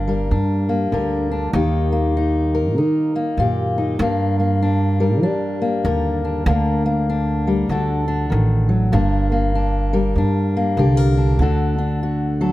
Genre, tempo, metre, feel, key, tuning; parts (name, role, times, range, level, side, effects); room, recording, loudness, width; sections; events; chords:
acoustic folk duo or small band; 97 BPM; 4/4; swing 62% on 8ths; G harmonic minor; A4 = 440 Hz
fingerpicked steel-string acoustic guitar; accompaniment; 0.0-12.5 s; G2 to Bb4; -20 LUFS; left 2 dB
upright bass; bass; 0.0-12.5 s; G1 to G3; -19 LUFS; right 1 dB
light reverb; close, detailed microphones, faint mains hum; -16 LUFS; side -16 dB against mid
0.0-12.5 A section
0.0 Gm; 1.5 Eb; 4.0 Gm; 6.5 Gm/D; 7.7 D; 8.9 Gm; 11.4 D